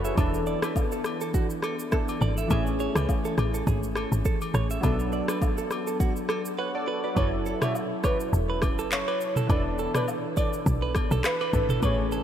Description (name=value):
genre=afrobeats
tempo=103 BPM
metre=4/4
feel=swing 55% on 16ths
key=unclear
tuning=A4 = 442 Hz
part: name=warm analog keys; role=accompaniment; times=0.0-12.2 s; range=E3 to F#5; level=-30 LUFS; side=left 1 dB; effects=chorus
part: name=direct-recorded clean electric guitar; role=riff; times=0.0-12.2 s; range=F#4 to E5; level=-34 LUFS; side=right 6 dB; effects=phaser, diffuse ambient delay
part: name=woody log drum bass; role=bass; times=0.0-12.2 s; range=E1 to C#2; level=-27 LUFS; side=equal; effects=none
part: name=afro-pop drum kit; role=drums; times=0.0-12.2 s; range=handclaps, kick drum, rim click, shaker, toms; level=-29 LUFS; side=equal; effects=none
part: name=agogo bells and woodblock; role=percussion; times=0.2-12.0 s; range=none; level=-39 LUFS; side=left 6 dB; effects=none
part: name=warm velvety synth lead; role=melody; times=7.2-12.0 s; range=B4 to E5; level=-31 LUFS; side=equal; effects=chorus, diffuse ambient delay
room=moderate cathedral reverb, RT60 5.2 s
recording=dreamy mix soaked in reverb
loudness=-24 LUFS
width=side -10 dB against mid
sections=0.0-7.2 A section; 7.2-12.2 B section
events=break 6.6-7.2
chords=0.2 E7sus4; 2.5 Amaj7; 4.8 Bm7; 7.2 F#m7; 9.5 E7sus4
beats=| 0.17 0.76 1.34 1.92 | 2.50 3.09 3.67 4.25 | 4.83 5.42 6.00 6.58 | 7.17 7.75 8.33 8.91 | 9.50 10.08 10.66 11.24 | 11.83